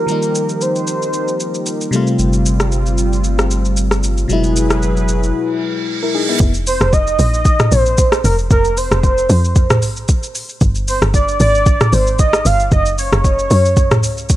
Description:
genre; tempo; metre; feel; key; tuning
amapiano; 114 BPM; 4/4; swing 55% on 16ths; unclear; A4 = 436 Hz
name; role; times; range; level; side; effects
warm velvety synth lead; melody; 0.0-1.9, 6.7-14.4 s; Bb4 to F5; -17 LUFS; right 1 dB; chorus, digital delay
FM electric piano; accompaniment; 0.0-6.5 s; Cb3 to Bb4; -19 LUFS; left 3 dB; chorus, phaser
warm analog pad; sustained chords; 0.0-6.4 s; F3 to Cb5; -22 LUFS; right 1 dB; chorus, sidechain pumping
smooth R&B drum kit; drums; 0.1-14.4 s; hi-hat, kick drum, rim click, shaker, toms; -16 LUFS; equal; overdrive, vintage 12-bit sampler grit
warm sub bass; bass; 2.2-5.3 s; Gb1 to G1; -17 LUFS; equal; none
reverse cymbal; sound effects; 5.6-6.4 s; none; -22 LUFS; right 5 dB; none
woody log drum bass; bass; 6.4-14.3 s; F1 to Gb2; -16 LUFS; equal; none
room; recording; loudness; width
little or no reverb; none; -12 LUFS; side -14 dB against mid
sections
0.0-6.4 A section; 6.4-14.4 B section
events
break 5.3-6.4; reverse cymbal 5.6-6.4; drop 6.4-14.4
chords
0.0 F9sus4; 1.9 G9sus4; 4.3 Gb9sus4; 6.4 F7sus4; 10.3 G5; 12.7 Gb5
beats
| 0.09 0.61 1.14 1.66 | 2.19 2.72 3.24 3.77 | 4.30 4.82 5.35 5.88 | 6.40 6.93 7.45 7.98 | 8.51 9.03 9.56 10.09 | 10.61 11.14 11.66 12.19 | 12.72 13.24 13.77 14.30

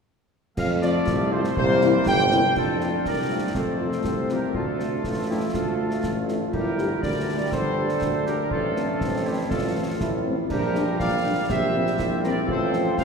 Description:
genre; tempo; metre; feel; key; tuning
military-style march for wind band; 121 BPM; 2/4; straight; F major; A4 = 440 Hz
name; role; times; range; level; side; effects
warm trumpet section; melody; 0.6-13.0 s; G4 to G5; -28 LUFS; equal; none
warm woodwind section; second line; 0.6-13.0 s; E4 to G5; -32 LUFS; left 1 dB; none
bright trombone section; sustained chords; 0.6-13.0 s; D3 to C4; -31 LUFS; right 1 dB; none
warm tuba; bass; 0.6-13.0 s; G1 to F2; -26 LUFS; equal; none
clash cymbals, concert bass drum and concert snare drum; drums; 0.6-13.0 s; none; -31 LUFS; equal; none
mellow French horn section; accompaniment; 0.8-12.8 s; E3 to G4; -32 LUFS; left 5 dB; none
warm euphonium; second line; 2.6-13.0 s; C4 to G4; -29 LUFS; right 2 dB; none
room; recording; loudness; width
wet cathedral reverb, RT60 4.8 s; recorded in a church or concert hall; -21 LUFS; side -5 dB against mid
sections
0.6-2.6 A section; 2.6-13.0 B section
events
none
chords
0.6 F; 1.6 C7; 2.6 F; 4.5 Dm; 6.5 Gm; 8.5 F/A; 10.5 Gm7/Bb; 11.5 C7/Bb; 12.5 F/A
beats
| 0.57 1.07 | 1.56 2.06 | 2.56 3.05 | 3.55 4.04 | 4.54 5.04 | 5.53 6.03 | 6.53 7.02 | 7.52 8.02 | 8.51 9.01 | 9.51 10.00 | 10.50 10.99 | 11.49 11.99 | 12.48 12.98

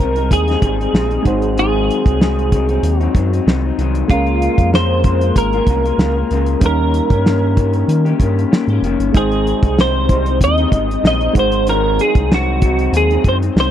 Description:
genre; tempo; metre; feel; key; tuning
indie pop, bedroom pop; 95 BPM; 4/4; swing 55% on 16ths; Ab major; A4 = 441 Hz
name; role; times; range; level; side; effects
clean electric guitar; melody; 0.0-13.7 s; F4 to Eb5; -18 LUFS; right 1 dB; analog chorus
electric guitar through a small old amp; accompaniment; 0.0-13.7 s; Ab2 to G4; -20 LUFS; left 7 dB; lush chorus, warbly pitch drift
soft electric-piano-like synth keys; accompaniment; 0.0-13.7 s; G3 to G5; -24 LUFS; right 6 dB; chorus
round analog bass; bass; 0.0-13.7 s; F1 to Eb3; -18 LUFS; equal; none
cloth-damped thuddy drum kit; drums; 0.0-13.7 s; hi-hat, kick drum, snare drum; -14 LUFS; equal; none
room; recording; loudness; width
little or no reverb; dry, close 1970s-style studio recording; -13 LUFS; side -10 dB against mid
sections
0.0-13.7 A section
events
none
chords
0.0 Abmaj7; 1.3 Ab7; 4.1 Db6; 6.6 Eb7; 9.1 Abmaj7; 11.4 Ab7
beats
0.31 0.94 | 1.57 2.20 2.83 3.46 | 4.10 4.73 5.36 5.99 | 6.62 7.25 7.88 8.52 | 9.15 9.78 10.41 11.04 | 11.67 12.30 12.93 13.56

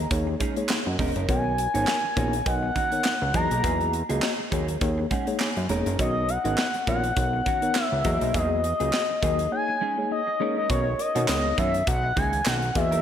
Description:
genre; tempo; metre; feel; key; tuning
early-eighties boogie funk; 102 BPM; 4/4; swing 56% on 16ths; B major; A4 = 440 Hz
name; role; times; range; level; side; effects
expressive synth lead; melody; 0.0-13.0 s; C#5 to A#5; -26 LUFS; left 2 dB; chorus
semi-hollow electric guitar; riff; 0.0-13.0 s; D#3 to A#4; -34 LUFS; right 6 dB; lush chorus
fat analog bass; bass; 0.0-13.0 s; E1 to B2; -27 LUFS; right 1 dB; none
mellow tine electric piano; accompaniment; 0.1-13.0 s; A#3 to A#5; -30 LUFS; left 2 dB; medium stereo tremolo
modern studio drum kit; drums; 0.1-13.0 s; handclaps, hi-hat, kick drum, snare drum; -29 LUFS; equal; none
group handclap; percussion; 0.7-12.6 s; none; -35 LUFS; right 5 dB; none
room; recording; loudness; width
moderate lush hall reverb, RT60 1.9 s, studio reverb; dreamy mix soaked in reverb; -22 LUFS; side -9 dB against mid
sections
0.0-10.7 A section; 10.7-13.0 B section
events
tine electric piano fill 4.8-6.0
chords
0.1 D#7sus4; 1.3 Bmaj9; 3.3 Emaj9#11; 4.8 D#7sus4; 6.0 Bmaj9; 8.1 Emaj9#11; 9.5 D#7sus4; 10.7 Bmaj9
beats
0.11 0.70 | 1.29 1.88 2.46 3.05 | 3.64 4.23 4.82 5.40 | 5.99 6.58 7.17 7.76 | 8.35 8.93 9.52 10.11 | 10.70 11.29 11.88 12.46

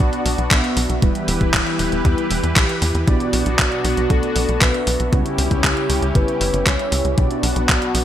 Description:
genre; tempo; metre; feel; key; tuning
italo disco; 117 BPM; 4/4; straight; B minor; A4 = 440 Hz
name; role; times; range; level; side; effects
lush unison pad; sustained chords; 0.0-8.0 s; E3 to B4; -23 LUFS; left 1 dB; chorus, phaser
mellow synth brass; stabs; 0.0-8.0 s; B2 to E5; -25 LUFS; right 1 dB; chorus
tight sequencer bass; bass; 0.0-8.0 s; E1 to E2; -22 LUFS; equal; tube saturation
clean 12-bit digital drum machine; drums; 0.0-8.0 s; handclaps, hi-hat; -21 LUFS; equal; overdrive, studio ambience, gated reverb
electronic kick drum; drums; 0.0-7.8 s; none; -19 LUFS; equal; overdrive, studio ambience
soft octave-layered synth lead; melody; 3.6-8.0 s; F#4 to C#5; -24 LUFS; equal; chorus, digital delay
room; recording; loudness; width
moderate plate reverb, RT60 2.4 s; bright 1980s-style digital production; -16 LUFS; side -11 dB against mid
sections
0.0-8.0 A section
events
none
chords
0.0 Bm; 1.0 Em; 3.1 Bm; 5.1 C#dim; 7.2 Bm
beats
0.00 0.51 | 1.02 1.54 2.05 2.56 | 3.08 3.59 4.10 4.61 | 5.13 5.64 6.15 6.67 | 7.18 7.69

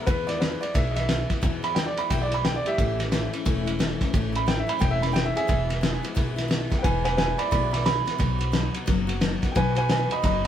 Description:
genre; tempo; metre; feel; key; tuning
rockabilly; 177 BPM; 4/4; swing 62% on 8ths; E major; A4 = 440 Hz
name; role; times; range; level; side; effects
clear upright piano; melody; 0.0-10.5 s; G4 to B5; -27 LUFS; right 2 dB; none
picked steel-string acoustic guitar; accompaniment; 0.0-10.5 s; E2 to F#4; -31 LUFS; left 6 dB; none
upright bass; bass; 0.1-10.5 s; E1 to E2; -29 LUFS; equal; none
cloth-damped thuddy drum kit; drums; 0.1-10.5 s; kick drum, ride cymbal, snare drum; -26 LUFS; equal; none
room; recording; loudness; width
light reverb; band playing live in one room; -22 LUFS; side -10 dB against mid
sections
0.0-10.5 A section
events
upright piano solo 0.0-10.5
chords
0.0 E; 2.8 A; 5.5 E; 8.2 B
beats
| 0.07 0.41 0.75 1.09 | 1.43 1.76 2.10 2.44 | 2.78 3.12 3.46 3.80 | 4.13 4.47 4.81 5.15 | 5.49 5.83 6.17 6.51 | 6.85 7.18 7.52 7.86 | 8.20 8.54 8.88 9.22 | 9.56 9.90 10.24

